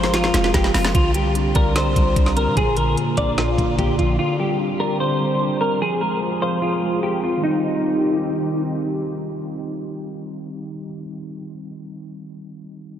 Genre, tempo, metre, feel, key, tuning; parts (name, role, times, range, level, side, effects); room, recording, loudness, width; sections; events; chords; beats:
hip hop, trap; 148 BPM; 4/4; half-time; C minor; A4 = 440 Hz
clean electric guitar; melody; 0.0-8.6 s; Eb4 to D5; -22 LUFS; equal; ensemble chorus, low-pass filter, tape echo
mellow tine electric piano; accompaniment; 0.0-13.0 s; Bb2 to F5; -25 LUFS; equal; medium stereo tremolo, low-pass filter
dark analog pad; sustained chords; 0.0-10.7 s; D3 to Ab4; -28 LUFS; equal; chorus
clean 808-style bass; bass; 0.0-4.2 s; F1 to C3; -22 LUFS; equal
trap drum kit; drums; 0.0-4.1 s; hi-hat, kick drum, snare drum; -22 LUFS; equal
wet huge ambient reverb, RT60 8.0 s; dreamy mix soaked in reverb, low-pass filter; -18 LUFS; side -10 dB against mid
0.9-7.4 A section; 7.4-10.7 B section
drum fill 0.0-0.9
0.0 Fm; 0.9 Csus2; 2.6 Bb; 4.2 Csus2; 5.8 Fm; 7.4 Cm
0.14 0.54 | 0.95 1.35 1.76 2.16 | 2.57 2.97 3.38 3.78 | 4.19 4.59 5.00 5.41 | 5.81 6.22 6.62 7.03 | 7.43 7.84 8.24 8.65 | 9.05 9.46 9.87 10.27